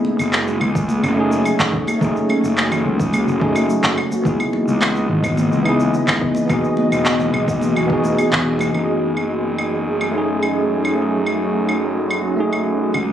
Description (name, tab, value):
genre	sunset chillout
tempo	107 BPM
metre	4/4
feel	straight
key	F# dorian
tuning	A4 = 440 Hz
part	tine electric piano	accompaniment	0.0-13.0 s	A3 to G#4	-21 LUFS	equal	auto-pan, digital delay
part	ethereal airy pad	sustained chords	0.0-13.1 s	C#3 to D#5	-21 LUFS	equal	ensemble chorus, built-in reverb, vintage 12-bit sampler grit
part	congas	percussion	0.0-8.7 s	none	-25 LUFS	equal	none
part	fuzz fingered electric bass	bass	0.2-13.1 s	E1 to C#2	-23 LUFS	equal	overdrive
part	electronic claves, cabasa and handclaps	drums	0.2-13.1 s	none	-22 LUFS	equal	overdrive, studio reverb
part	electronic kick drum	drums	0.8-8.4 s	none	-22 LUFS	equal	overdrive, studio reverb
room	moderate plate reverb, RT60 1.3 s, digital ambience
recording	recorded on a phone in the room, studio ambience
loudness	-16 LUFS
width	side -10 dB against mid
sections	0.0-8.7 A section; 8.7-13.1 B section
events	none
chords	0.0 F#m69; 4.0 C#m9; 6.5 Emaj9; 8.7 F#m69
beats	0.33 0.89 1.45 | 2.01 2.57 3.13 3.69 | 4.25 4.82 5.38 5.94 | 6.50 7.06 7.62 8.18 | 8.74 9.30 9.86 10.42 | 10.98 11.54 12.11 12.67